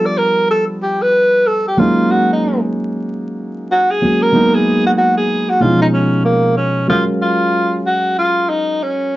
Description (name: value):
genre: hip hop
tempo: 94 BPM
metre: 4/4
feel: swing 62% on 16ths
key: F# major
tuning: A4 = 439 Hz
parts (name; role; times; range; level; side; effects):
- breathy tenor saxophone; melody; 0.0-9.2 s; A#3 to D5; -14 LUFS; equal; none
- dark grand piano; accompaniment; 0.0-9.2 s; B2 to E#5; -16 LUFS; equal; none
room: wet small room reverb, RT60 0.5 s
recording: dark, warm production, vinyl crackle, nothing above 7.6 kHz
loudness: -12 LUFS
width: side -16 dB against mid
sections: 0.0-6.9 A section; 6.9-9.2 B section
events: tenor saxophone solo 0.0-6.9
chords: 0.0 G7; 1.8 F#6; 4.3 G#m7; 5.6 C#7; 6.9 F#maj7